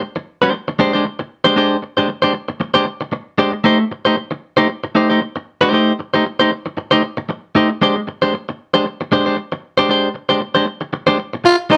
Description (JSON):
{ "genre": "funk", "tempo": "116 BPM", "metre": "4/4", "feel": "swing 56% on 16ths", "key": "unclear", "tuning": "A4 = 440 Hz", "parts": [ { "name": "clean electric guitar", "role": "accompaniment", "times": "0.0-11.8 s", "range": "Ab3 to C5", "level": "-16 LUFS", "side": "equal", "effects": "none" }, { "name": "growling tenor saxophone", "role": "melody", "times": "11.5-11.8 s", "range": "Eb4 to F4", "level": "-13 LUFS", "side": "equal", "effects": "none" } ], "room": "moderate studio reverb, RT60 0.5 s", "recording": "band playing live in one room", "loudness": "-17 LUFS", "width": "mono", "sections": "0.0-11.8 A section", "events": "none", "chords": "0.0 Abmaj7#11; 3.6 Am7b5; 7.8 Abmaj7#11" }